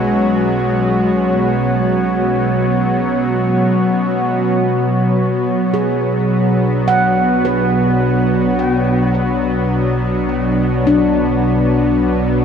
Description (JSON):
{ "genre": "ambient", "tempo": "53 BPM", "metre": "4/4", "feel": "straight", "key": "B dorian", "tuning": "A4 = 440 Hz", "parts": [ { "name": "warm analog pad", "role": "sustained chords", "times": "0.0-12.4 s", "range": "B2 to C#5", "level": "-15 LUFS", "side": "equal", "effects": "chorus" }, { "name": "handpan", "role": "arpeggios", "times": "0.0-12.4 s", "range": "G#3 to F#5", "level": "-20 LUFS", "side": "left 1 dB", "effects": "ping-pong delay" }, { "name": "warm sub bass", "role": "bass", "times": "0.0-12.4 s", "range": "B1", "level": "-30 LUFS", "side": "equal", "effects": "none" }, { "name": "bowed-like drone", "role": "drone", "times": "0.0-12.4 s", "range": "B3 to F#4", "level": "-20 LUFS", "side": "right 2 dB", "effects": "built-in reverb" }, { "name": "glass harmonica", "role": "texture", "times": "0.0-4.6 s", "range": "F#4 to F#5", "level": "-23 LUFS", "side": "right 1 dB", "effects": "stereo widening" } ], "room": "wet cathedral reverb, RT60 6.1 s", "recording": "in a vast, echoing space", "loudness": "-13 LUFS", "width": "side -7 dB against mid", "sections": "0.0-4.6 A section; 4.6-12.4 B section", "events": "fade-in on sub bass 4.6-12.4", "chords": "0.0 F#5/B; 4.6 Bm" }